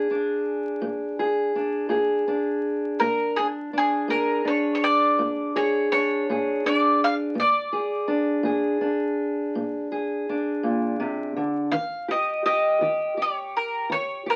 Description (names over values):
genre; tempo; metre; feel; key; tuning
acoustic country blues, solo or duo; 55 BPM (dotted quarters); 12/8; straight; Bb mixolydian; A4 = 440 Hz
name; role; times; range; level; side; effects
bowl-back mandolin; melody; 0.0-14.4 s; Ab4 to F5; -25 LUFS; equal; none
fingerpicked steel-string acoustic guitar; accompaniment; 0.0-14.4 s; Bb2 to Ab4; -27 LUFS; equal; none
room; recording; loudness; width
wet studio reverb, RT60 0.6 s; very old 78 rpm record, vinyl crackle; -24 LUFS; mono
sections
0.0-14.4 A section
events
none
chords
0.0 Bb7; 11.7 Eb7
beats
0.82 1.92 | 3.01 4.10 5.19 6.29 | 7.38 8.46 9.55 10.64 | 11.73 12.81 13.90